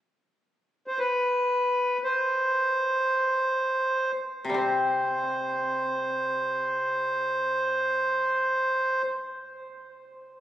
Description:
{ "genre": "japanese traditional, Japanese chamber music", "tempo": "free time", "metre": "none", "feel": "none", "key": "unclear", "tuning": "A4 = 440 Hz", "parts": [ { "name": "accordion", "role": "melody", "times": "0.9-9.0 s", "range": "B4 to C5", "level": "-25 LUFS", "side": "right 1 dB", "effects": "none" }, { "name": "koto", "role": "accompaniment", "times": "4.4-9.0 s", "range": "C3 to C4", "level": "-30 LUFS", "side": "left 2 dB", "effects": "none" } ], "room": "wet cathedral reverb, RT60 5.5 s", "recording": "recorded on a phone in the room, club reverb, compression", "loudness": "-24 LUFS", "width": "side -11 dB against mid", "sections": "0.0-4.6 A section; 4.6-10.4 B section", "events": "slowing down 0.0-4.6", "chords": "none" }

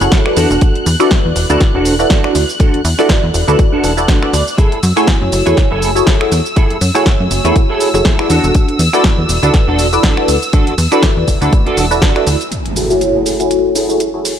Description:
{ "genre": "filtered disco house", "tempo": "121 BPM", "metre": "4/4", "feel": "swing 56% on 16ths", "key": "F# minor", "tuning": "A4 = 440 Hz", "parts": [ { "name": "funky polysynth comp", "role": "accompaniment", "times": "0.0-14.3 s", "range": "A3 to G#5", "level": "-15 LUFS", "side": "equal", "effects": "chorus, phaser, sidechain pumping, low-pass filter" }, { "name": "rich studio violin section", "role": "sustained chords", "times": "0.0-14.4 s", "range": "G#5 to F#6", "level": "-23 LUFS", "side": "equal", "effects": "sidechain pumping, low-pass filter" }, { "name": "plucky analog bass", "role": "bass", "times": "0.0-12.4 s", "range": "E1 to F#2", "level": "-16 LUFS", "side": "equal", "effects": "tube saturation, sidechain pumping, low-pass filter" }, { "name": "house drum kit", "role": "drums", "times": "0.0-14.4 s", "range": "finger snaps, hi-hat, shaker, snare drum", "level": "-19 LUFS", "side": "equal", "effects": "sidechain pumping on perc, studio reverb, sidechain pumping on hats, sidechain pumping on cymbals" }, { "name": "clean electric guitar", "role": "riff", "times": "0.1-14.3 s", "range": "D4 to A5", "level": "-18 LUFS", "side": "right 2 dB", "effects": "ensemble chorus, sidechain pumping, low-pass filter" }, { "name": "electronic kick drum", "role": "drums", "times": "0.1-12.1 s", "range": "none", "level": "-12 LUFS", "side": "equal", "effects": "studio reverb" }, { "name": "impact", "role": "sound effects", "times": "12.5-14.4 s", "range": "none", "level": "-24 LUFS", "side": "equal", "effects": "none" } ], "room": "light reverb, digital ambience", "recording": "none", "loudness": "-10 LUFS", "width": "side -9 dB against mid", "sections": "0.0-12.5 A section; 12.5-14.4 B section", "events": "clean electric guitar fill 3.6-4.6; impact 12.5-14.4; filter sweep 12.5-14.4", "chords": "0.4 E9sus4; 4.6 F#m9; 8.3 E9sus4; 12.5 F#m9" }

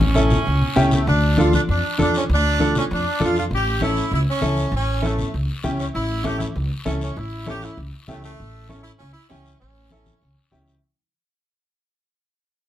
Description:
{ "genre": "latin, cumbia", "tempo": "197 BPM", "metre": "4/4", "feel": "straight", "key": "unclear", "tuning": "A4 = 439 Hz", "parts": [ { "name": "edgy saxophone section", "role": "melody", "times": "0.0-10.5 s", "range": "A3 to G4", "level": "-24 LUFS", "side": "right 1 dB", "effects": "none" }, { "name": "upright bass", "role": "bass", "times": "0.0-10.8 s", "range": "A1 to F2", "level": "-22 LUFS", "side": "equal", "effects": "none" }, { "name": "congas", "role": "percussion", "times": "0.0-10.7 s", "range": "none", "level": "-26 LUFS", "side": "left 2 dB", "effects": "none" }, { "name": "bright upright piano", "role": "accompaniment", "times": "0.1-10.7 s", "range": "C#4 to A4", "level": "-23 LUFS", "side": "right 1 dB", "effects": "none" }, { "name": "guiro", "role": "percussion", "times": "0.2-10.8 s", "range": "none", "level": "-35 LUFS", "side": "left 5 dB", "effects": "none" } ], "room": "light reverb", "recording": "dark, warm production", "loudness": "-18 LUFS", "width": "side -12 dB against mid", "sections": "0.0-1.1 A section; 1.1-10.8 A section", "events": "drum fill 0.0-1.1; fade-out 1.1-10.8", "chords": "0.0 A7; 1.1 Dm; 3.5 A" }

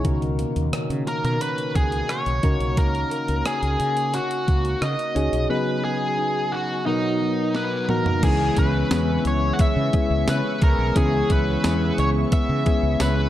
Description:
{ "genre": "1980s-style pop", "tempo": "88 BPM", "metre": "4/4", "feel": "straight", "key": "C# dorian", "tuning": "A4 = 440 Hz", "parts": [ { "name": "soft electric-piano-like synth keys", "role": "accompaniment", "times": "0.0-13.3 s", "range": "B2 to A#4", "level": "-26 LUFS", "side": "left 3 dB", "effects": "chorus" }, { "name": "clean electric guitar", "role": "riff", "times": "0.0-13.3 s", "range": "D#3 to G#4", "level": "-31 LUFS", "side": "right 5 dB", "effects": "analog chorus" }, { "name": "mellow fretless electric bass", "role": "bass", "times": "0.0-13.3 s", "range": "B1 to C#3", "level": "-24 LUFS", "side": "equal", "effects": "none" }, { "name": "clean 12-bit digital drum machine", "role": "drums", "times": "0.0-13.2 s", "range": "crash cymbal, hi-hat, kick drum, rim click, snare drum, tambourine, toms", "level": "-23 LUFS", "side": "equal", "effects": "none" }, { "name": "smooth overdriven lead guitar", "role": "melody", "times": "1.1-13.3 s", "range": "D#4 to F#5", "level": "-25 LUFS", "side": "equal", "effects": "none" }, { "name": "chorused pulse-width pad", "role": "sustained chords", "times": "8.2-13.3 s", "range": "B3 to C#6", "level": "-33 LUFS", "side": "right 2 dB", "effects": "none" } ], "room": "moderate plate reverb, RT60 2.0 s, digital ambience", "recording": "dark, warm production", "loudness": "-19 LUFS", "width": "side -13 dB against mid", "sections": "0.0-8.2 A section; 8.2-13.3 B section", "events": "drum fill 7.5-8.2", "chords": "0.0 Bmaj7/C#; 2.4 D#m7; 5.5 G#m7/C#; 6.9 Bmaj7; 8.2 C#m7" }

